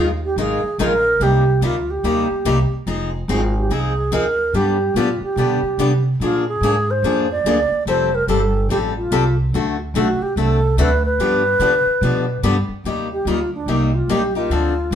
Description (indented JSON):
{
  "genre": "acoustic string swing (jazz manouche)",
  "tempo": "144 BPM",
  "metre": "4/4",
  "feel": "swing 63% on 8ths",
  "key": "C minor",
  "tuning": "A4 = 440 Hz",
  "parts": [
    { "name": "wooden-headed alto flute", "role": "melody", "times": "0.0-14.9 s", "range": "D4 to D5", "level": "-19 LUFS", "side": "right 1 dB", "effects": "none" },
    { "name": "picked steel-string acoustic guitar", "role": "accompaniment", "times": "0.0-14.9 s", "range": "C3 to Bb4", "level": "-21 LUFS", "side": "left 4 dB", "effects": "none" },
    { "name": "upright bass", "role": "bass", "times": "0.0-14.9 s", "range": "F1 to D3", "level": "-21 LUFS", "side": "right 1 dB", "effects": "none" }
  ],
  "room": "moderate studio reverb, RT60 0.7 s",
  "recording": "band playing live in one room",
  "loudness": "-16 LUFS",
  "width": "side -9 dB against mid",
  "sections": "0.0-12.8 A section; 12.8-14.9 B section",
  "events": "alto flute solo 12.8-14.9",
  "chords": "0.0 Bb7sus4; 1.2 Cm7; 2.9 Fm7; 4.5 G; 6.2 Bb7; 7.9 Fadd9; 9.5 D7; 11.2 G7; 12.8 Cm7"
}